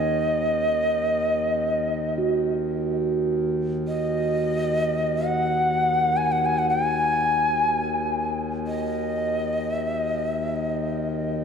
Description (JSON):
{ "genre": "world meditative, free-time meditation music", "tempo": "free time", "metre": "none", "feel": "none", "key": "Eb minor pentatonic", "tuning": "A4 = 440 Hz", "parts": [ { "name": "bright Native American-style cedar flute", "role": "melody", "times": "0.0-11.4 s", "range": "Eb5 to Ab5", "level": "-23 LUFS", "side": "equal", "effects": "tape echo" }, { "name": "pedal harmonium", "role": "drone", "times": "0.0-11.4 s", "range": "Eb2", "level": "-28 LUFS", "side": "left 4 dB", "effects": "none" }, { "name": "bronze singing bowl", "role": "texture", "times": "0.0-10.7 s", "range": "Db4 to Gb4", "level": "-30 LUFS", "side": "right 6 dB", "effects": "none" } ], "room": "wet church reverb, RT60 2.9 s", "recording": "dark, warm production", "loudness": "-22 LUFS", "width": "side -6 dB against mid", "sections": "0.0-11.4 A section", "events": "none", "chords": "none", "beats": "free time" }